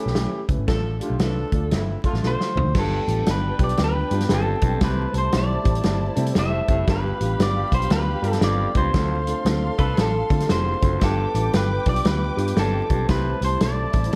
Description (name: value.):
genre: uptempo 1960s-style soul.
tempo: 116 BPM.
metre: 4/4.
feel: swing 63% on 8ths.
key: G mixolydian.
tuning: A4 = 441 Hz.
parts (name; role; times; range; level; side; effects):
mellow horn section; second line; 0.0-2.5, 9.8-10.1 s; D3 to A4; -34 LUFS; equal; none.
dark upright piano; accompaniment; 0.0-14.2 s; G3 to C5; -31 LUFS; equal; none.
vintage muted picked electric bass; bass; 0.1-14.2 s; F1 to D3; -26 LUFS; equal; none.
natural country drum kit; drums; 0.1-14.2 s; crash cymbal, hi-hat, kick drum, snare drum, toms; -26 LUFS; equal; none.
electric guitar through a small old amp; melody; 2.3-14.2 s; A4 to E5; -29 LUFS; equal; none.
dark studio violin section; second line; 2.7-14.2 s; D4 to D6; -34 LUFS; equal; none.
breathy baritone saxophone; riff; 2.7-13.3 s; D2 to C3; -36 LUFS; equal; none.
room: light reverb, studio ambience.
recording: dark, warm production, vinyl crackle.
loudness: -22 LUFS.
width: mono.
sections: 0.0-2.8 A section; 2.8-14.2 B section.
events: drum fill 2.2-2.8; band accent 8.9-11.0.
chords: 0.0 A; 0.7 Dm/A; 2.8 G7; 4.8 C6; 6.9 G7; 8.9 Dm7; 11.0 G7; 13.1 C6.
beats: 0.16 | 0.68 1.20 1.72 2.23 | 2.75 3.27 3.78 4.30 | 4.81 5.33 5.84 6.36 | 6.88 7.39 7.91 8.42 | 8.94 9.46 9.98 10.49 | 11.01 11.53 12.05 12.57 | 13.09 13.61 14.13.